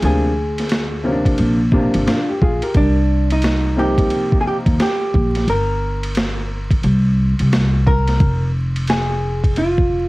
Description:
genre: hip hop, jazz-hop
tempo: 88 BPM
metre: 4/4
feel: swing 63% on 16ths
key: F dorian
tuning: A4 = 440 Hz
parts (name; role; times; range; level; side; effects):
- vintage hollow-body jazz guitar; melody; 0.0-10.1 s; D4 to Bb4; -21 LUFS; right 1 dB; cassette tape
- warm upright piano; accompaniment; 0.0-4.8 s; C3 to Bb4; -20 LUFS; left 1 dB; none
- upright bass; bass; 0.0-10.1 s; F1 to Eb2; -18 LUFS; equal; none
- boom bap sampler-style drum kit; drums; 0.0-9.9 s; hi-hat, kick drum, ride cymbal, snare drum; -20 LUFS; equal; none
room: little or no reverb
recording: home recording on cassette, vinyl crackle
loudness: -15 LUFS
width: side -21 dB against mid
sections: 0.0-10.1 A section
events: none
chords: 0.0 Dm7b5; 1.4 Bb7; 2.8 Cm7; 5.5 Gm; 6.8 Bbsus2/C; 8.2 Fm

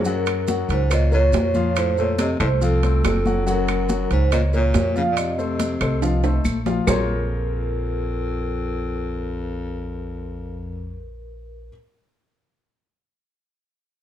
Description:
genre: Afro-Cuban jazz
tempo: 141 BPM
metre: 4/4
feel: straight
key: Bb minor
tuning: A4 = 440 Hz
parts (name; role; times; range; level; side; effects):
- vibraphone with soft mallets; melody; 0.0-11.7 s; A4 to F5; -26 LUFS; right 2 dB; plate reverb
- clear baritone saxophone; second line; 0.0-11.0 s; F2 to Db3; -28 LUFS; left 3 dB; none
- upright bass; bass; 0.0-11.7 s; Gb1 to Gb2; -23 LUFS; right 1 dB; none
- maracas; percussion; 0.0-7.0 s; none; -38 LUFS; right 4 dB; none
- warm grand piano; accompaniment; 0.1-11.7 s; F3 to Gb5; -26 LUFS; left 4 dB; none
- congas; percussion; 0.1-7.0 s; none; -28 LUFS; left 2 dB; none
- claves; percussion; 0.3-7.0 s; none; -34 LUFS; equal; none
- timbales; percussion; 0.3-7.0 s; none; -29 LUFS; right 8 dB; none
room: light reverb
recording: dark, warm production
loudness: -19 LUFS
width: side -11 dB against mid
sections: 0.1-6.9 A section; 6.9-10.3 B section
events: drum fill 6.0-6.9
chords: 0.1 Gb; 1.8 F; 3.5 Gb; 5.2 F7; 6.9 Bbm9

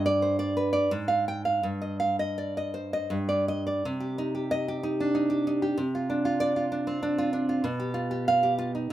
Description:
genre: romantic piece for solo classical guitar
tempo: 78-98 BPM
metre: 3/4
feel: rubato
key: C minor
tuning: A4 = 440 Hz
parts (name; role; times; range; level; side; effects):
- nylon-string guitar; solo; 0.0-8.9 s; G2 to G5; -25 LUFS; right 1 dB; none
room: moderate studio ambience, RT60 0.5 s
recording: band playing live in one room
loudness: -25 LUFS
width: side -13 dB against mid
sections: 0.0-3.9 A section; 3.9-8.9 B section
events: none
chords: 0.0 G; 0.9 Fm/Ab; 1.7 Cm/G; 3.1 G5; 3.9 Cm; 5.8 Csus24; 7.6 G7/B

